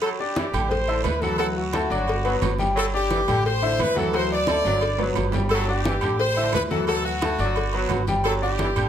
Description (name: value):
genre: latin, salsa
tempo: 175 BPM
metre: 4/4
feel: straight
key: G major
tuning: A4 = 440 Hz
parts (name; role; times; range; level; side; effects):
- bright horn section; melody; 0.0-8.9 s; F#4 to D5; -25 LUFS; equal; plate reverb
- brilliant trombone section; second line; 0.0-8.9 s; D3 to F#3; -31 LUFS; right 1 dB; none
- agogo bells and timbales; percussion; 0.0-8.9 s; none; -32 LUFS; right 9 dB; none
- congas; percussion; 0.0-8.9 s; none; -30 LUFS; left 1 dB; none
- cowbell; percussion; 0.0-8.9 s; none; -32 LUFS; left 5 dB; none
- guiro; percussion; 0.0-8.9 s; none; -40 LUFS; right 11 dB; none
- bright grand piano; accompaniment; 0.2-8.9 s; F#3 to G6; -27 LUFS; left 3 dB; none
- upright bass; bass; 0.5-8.9 s; G1 to D2; -27 LUFS; right 1 dB; none
room: moderate large studio reverb, RT60 0.9 s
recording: none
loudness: -20 LUFS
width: side -9 dB against mid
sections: 0.0-8.9 A section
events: drum fill 4.5-5.5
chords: 0.0 Am7; 1.4 D; 2.1 Gmaj7; 3.5 Am7; 4.1 D; 4.8 Gmaj7; 6.2 Am7; 6.9 D; 7.6 Gmaj7